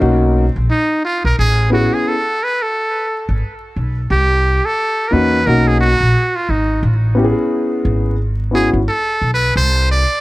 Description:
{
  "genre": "hip hop, jazz-hop",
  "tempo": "88 BPM",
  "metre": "4/4",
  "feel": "swing 59% on 16ths",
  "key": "A major",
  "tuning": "A4 = 440 Hz",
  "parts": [
    { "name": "dark grand piano", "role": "accompaniment", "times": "0.0-8.8 s", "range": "A#3 to G#4", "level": "-16 LUFS", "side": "left 2 dB", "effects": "none" },
    { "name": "upright bass", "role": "bass", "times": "0.0-10.0 s", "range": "G#1 to E2", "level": "-15 LUFS", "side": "equal", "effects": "none" },
    { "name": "trumpet with metal mute", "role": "melody", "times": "0.7-10.2 s", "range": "D#4 to D5", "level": "-17 LUFS", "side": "right 1 dB", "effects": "tape echo" }
  ],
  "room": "moderate studio ambience, RT60 0.5 s",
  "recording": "dark, warm production, vinyl crackle",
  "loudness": "-13 LUFS",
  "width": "side -18 dB against mid",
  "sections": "0.0-10.2 A section",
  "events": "muted trumpet solo 0.0-10.2",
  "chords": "0.0 Bmaj9; 1.4 Amaj9; 4.1 C; 5.5 Bmaj9; 6.8 Amaj9; 9.6 Csus2"
}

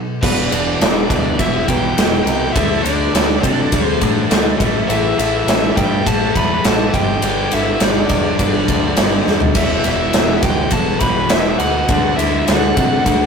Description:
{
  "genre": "hard rock",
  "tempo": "103 BPM",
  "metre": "4/4",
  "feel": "straight",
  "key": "E minor",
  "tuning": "A4 = 440 Hz",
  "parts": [
    { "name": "crunchy overdriven guitar", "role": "riff", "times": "0.0-13.3 s", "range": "E2 to D4", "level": "-26 LUFS", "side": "left 4 dB", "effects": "none" },
    { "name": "distorted electric guitar", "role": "riff", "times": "0.0-13.3 s", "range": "E2 to D4", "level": "-24 LUFS", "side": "right 6 dB", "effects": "distortion" },
    { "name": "bluesy overdriven lead guitar", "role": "melody", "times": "0.2-13.3 s", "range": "B4 to B5", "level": "-22 LUFS", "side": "equal", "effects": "distortion" },
    { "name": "dark smooth lead guitar", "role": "second line", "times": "0.2-13.3 s", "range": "B3 to B4", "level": "-28 LUFS", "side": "right 3 dB", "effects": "none" },
    { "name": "overdriven tonewheel organ", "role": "sustained chords", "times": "0.2-13.3 s", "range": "E3 to E5", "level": "-31 LUFS", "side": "right 1 dB", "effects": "none" },
    { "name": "high-gain distorted guitar", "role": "riff", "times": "0.2-13.3 s", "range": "E2 to D4", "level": "-28 LUFS", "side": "left 1 dB", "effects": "none" },
    { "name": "growling picked electric bass", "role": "bass", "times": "0.2-13.3 s", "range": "E1 to C3", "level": "-23 LUFS", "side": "equal", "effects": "overdrive" },
    { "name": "big rock drum kit", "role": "drums", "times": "0.2-13.2 s", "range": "crash cymbal, kick drum, ride cymbal, snare drum, toms", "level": "-16 LUFS", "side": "equal", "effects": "none" }
  ],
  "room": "light reverb",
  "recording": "rough rehearsal-room recording, tube saturation",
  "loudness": "-13 LUFS",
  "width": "side -6 dB against mid",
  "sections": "0.2-13.3 A section",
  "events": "break 0.0; drum fill 9.3",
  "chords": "0.2 Em; 2.6 D5; 4.6 A5; 6.9 G5; 9.6 E5; 11.9 D"
}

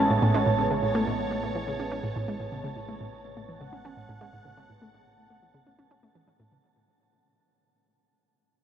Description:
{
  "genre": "ambient, sequencer-driven space music",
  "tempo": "124 BPM",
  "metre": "4/4",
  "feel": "straight",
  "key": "A major",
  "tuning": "A4 = 439 Hz",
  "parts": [
    { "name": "phased analog pad", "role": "sustained chords", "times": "0.0-6.7 s", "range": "A2 to F#5", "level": "-31 LUFS", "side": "right 2 dB", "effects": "phaser, chorus" },
    { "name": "Celtic harp", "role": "arpeggios", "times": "0.0-6.7 s", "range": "G#3", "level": "-39 LUFS", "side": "right 1 dB", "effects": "none" },
    { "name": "analog pluck", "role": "riff", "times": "0.0-6.6 s", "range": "A2 to C#4", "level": "-28 LUFS", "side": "equal", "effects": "chorus, tape echo" },
    { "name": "analog drone", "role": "bass", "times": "0.0-6.6 s", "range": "A1", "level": "-46 LUFS", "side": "equal", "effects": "chorus" },
    { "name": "wind-like tuned noise texture", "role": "texture", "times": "0.0-6.6 s", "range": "A5", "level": "-32 LUFS", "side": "right 3 dB", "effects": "built-in reverb" }
  ],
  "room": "wet huge ambient reverb, RT60 8.8 s",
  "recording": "worn, warbling old tape, cassette tape, warbly pitch drift",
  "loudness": "-25 LUFS",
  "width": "side -9 dB against mid",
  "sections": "0.0-6.6 A section",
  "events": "fade-out on synth drone 0.0-6.6; fade-out 0.0-6.6; filter sweep on synth arpeggio sound 0.0-6.6",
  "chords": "0.0 Amaj7"
}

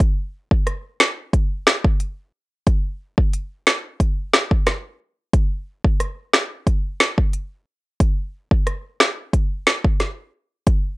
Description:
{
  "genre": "dancehall",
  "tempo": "90 BPM",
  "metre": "4/4",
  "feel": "straight",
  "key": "none",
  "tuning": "none",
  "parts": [
    { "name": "afro-pop drum kit", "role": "drums", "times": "0.0-10.8 s", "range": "finger snaps, hi-hat, kick drum, rim click, snare drum", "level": "-17 LUFS", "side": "equal", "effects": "vintage 12-bit sampler grit" }
  ],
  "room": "light reverb",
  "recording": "rough home demo mix",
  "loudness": "-18 LUFS",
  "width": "side -20 dB against mid",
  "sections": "0.0-11.0 A section",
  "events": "none",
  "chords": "none"
}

